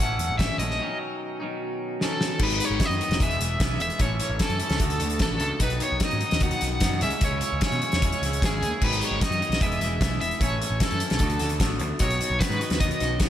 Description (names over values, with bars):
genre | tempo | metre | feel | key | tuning
indie rock | 150 BPM | 4/4 | straight | unclear | A4 = 440 Hz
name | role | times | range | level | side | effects
overdriven electric guitar | melody | 0.0-13.2 s | G#4 to F#5 | -28 LUFS | equal | tremolo, slapback echo
twangy electric guitar | riff | 0.0-13.3 s | G#2 to F#4 | -30 LUFS | equal | wide subtle chorus, slapback echo
fuzz picked electric bass | bass | 0.0-13.3 s | E1 to B2 | -29 LUFS | equal | overdrive
loose indie drum kit | drums | 0.0-13.3 s | crash cymbal, hi-hat, kick drum, snare drum | -26 LUFS | equal | none
room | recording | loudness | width
light reverb, small room ambience | none | -22 LUFS | side -11 dB against mid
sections
0.0-2.4 A section; 2.4-13.3 B section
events
break 0.8-2.4; drum fill 2.0-2.4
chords
0.0 A; 0.8 Badd9; 2.4 G#m7; 3.2 E; 4.0 A; 4.8 D6; 5.6 B; 7.0 C#m; 8.8 G#m7; 9.6 E; 10.4 A; 11.2 D6; 12.0 B